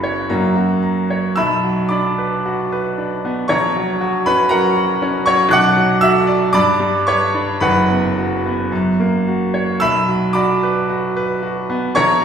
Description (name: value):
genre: classical, romantic character piece for solo piano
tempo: 53-61 BPM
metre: 2/4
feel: rubato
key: B minor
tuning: A4 = 441 Hz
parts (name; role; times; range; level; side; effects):
- bright grand piano; solo; 0.0-12.2 s; F#1 to F#6; -14 LUFS; equal; none
room: wet recital hall reverb, RT60 1.6 s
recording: recorded in a church or concert hall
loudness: -14 LUFS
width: side -7 dB against mid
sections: 0.0-1.4 A section; 1.4-12.2 B section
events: none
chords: 0.3 F#; 1.4 Bm; 3.5 F#/A#; 5.5 Bm; 6.5 G; 7.6 B5/F#; 8.7 F#; 9.8 Bm